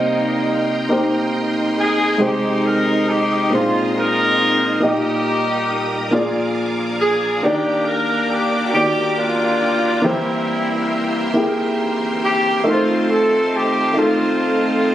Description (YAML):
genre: gospel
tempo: 46 BPM (dotted quarters)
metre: 6/8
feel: straight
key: Eb major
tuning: A4 = 440 Hz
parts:
  - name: breathy alto saxophone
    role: melody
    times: 0.0-14.9 s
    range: Eb4 to Bb4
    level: -25 LUFS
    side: right 3 dB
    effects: none
  - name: clear horn section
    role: melody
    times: 0.0-14.9 s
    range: G3 to Bb4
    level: -19 LUFS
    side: left 1 dB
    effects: none
  - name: dark grand piano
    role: accompaniment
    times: 0.0-14.9 s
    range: Bb2 to Eb5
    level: -19 LUFS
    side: equal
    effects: none
  - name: bright studio string section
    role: sustained chords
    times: 0.0-14.9 s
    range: C4 to Eb6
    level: -30 LUFS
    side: equal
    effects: none
  - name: bright tonewheel organ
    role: sustained chords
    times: 0.0-14.9 s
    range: Bb2 to G5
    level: -27 LUFS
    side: right 2 dB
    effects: chorus vibrato, slow rotary speaker
room: light reverb, small room ambience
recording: recorded on a phone in the room, studio reverb, compression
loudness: -16 LUFS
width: side -12 dB against mid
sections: 0.0-14.9 A section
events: none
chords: 0.0 Cm7; 2.2 Abmaj7/C; 3.5 Bb9sus4; 4.8 Eb/Bb; 6.1 Bb7; 7.4 Ebmaj7; 10.0 C7/E; 12.7 F7